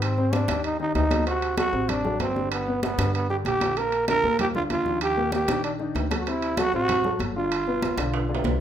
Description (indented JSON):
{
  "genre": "latin, salsa",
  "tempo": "192 BPM",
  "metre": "4/4",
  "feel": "straight",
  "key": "unclear",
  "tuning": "A4 = 438 Hz",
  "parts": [
    { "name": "growling trombone", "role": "melody", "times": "0.0-8.4 s", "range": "B3 to Bb4", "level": "-25 LUFS", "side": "right 2 dB", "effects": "none" },
    { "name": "dark upright piano", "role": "accompaniment", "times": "0.0-8.5 s", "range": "Bb2 to C5", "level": "-30 LUFS", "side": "left 3 dB", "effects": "none" },
    { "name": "upright bass", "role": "bass", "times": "0.0-8.6 s", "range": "G1 to Ab2", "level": "-30 LUFS", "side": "left 1 dB", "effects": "none" },
    { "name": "congas", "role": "percussion", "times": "0.0-8.6 s", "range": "none", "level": "-32 LUFS", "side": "left 1 dB", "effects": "none" },
    { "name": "timbales", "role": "percussion", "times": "0.0-8.5 s", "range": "none", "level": "-33 LUFS", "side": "right 6 dB", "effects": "none" }
  ],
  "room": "light reverb",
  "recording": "minimal, uncompressed stereo recording",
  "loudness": "-22 LUFS",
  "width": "side -10 dB against mid",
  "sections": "0.0-8.6 A section",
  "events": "drum fill 8.1-8.6",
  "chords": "0.0 Abmaj7; 1.3 D7; 2.5 G; 3.8 Bb; 5.0 Ebmaj7; 6.3 D7; 7.5 G7"
}